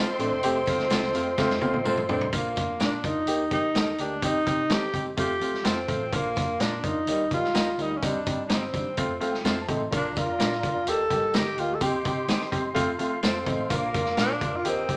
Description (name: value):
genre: uptempo 1960s-style soul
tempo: 127 BPM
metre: 4/4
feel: straight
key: Bb major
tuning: A4 = 440 Hz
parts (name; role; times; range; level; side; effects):
- breathy tenor saxophone; melody; 0.0-15.0 s; Bb3 to A4; -30 LUFS; equal; none
- vibraphone with hard mallets; second line; 0.0-1.8 s; none; barely audible; none; none
- warm studio string section; second line; 0.0-2.1 s; C5 to C6; -40 LUFS; equal; none
- warm upright piano; accompaniment; 0.0-15.0 s; G3 to C6; -32 LUFS; equal; none
- mellow tonewheel organ; sustained chords; 0.0-2.3, 9.9-15.0 s; F4 to Eb6; -37 LUFS; equal; chorus vibrato, stopped rotary speaker
- clean electric guitar; stabs; 0.0-14.3 s; C4 to Eb5; -37 LUFS; equal; none
- vintage muted picked electric bass; bass; 0.2-15.0 s; E1 to F3; -42 LUFS; equal; none
- vintage drum kit; drums; 0.2-15.0 s; hi-hat, kick drum, snare drum, toms; -31 LUFS; equal; none
- tambourine; percussion; 0.2-15.0 s; none; -47 LUFS; equal; none
room: moderate large studio reverb, RT60 1.1 s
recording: none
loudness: -26 LUFS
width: mono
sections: 0.0-2.3 A section; 2.3-15.0 B section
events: drum fill 1.4-2.3; upright piano fill 9.0-9.9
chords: 0.0 F; 2.3 Bb; 3.3 Eb; 4.2 Cm/Eb; 5.2 F; 6.1 Bb; 7.1 Eb; 8.0 Cm/Eb; 9.0 F; 9.9 Bb; 10.9 Eb; 11.8 Cm/Eb; 12.8 F; 13.7 Bb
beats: | 0.43 0.91 1.38 1.86 | 2.33 2.81 3.28 3.75 | 4.23 4.70 5.18 5.65 | 6.13 6.60 7.08 7.55 | 8.02 8.50 8.97 9.45 | 9.92 10.39 10.87 11.34 | 11.81 12.29 12.76 13.23 | 13.71 14.18 14.65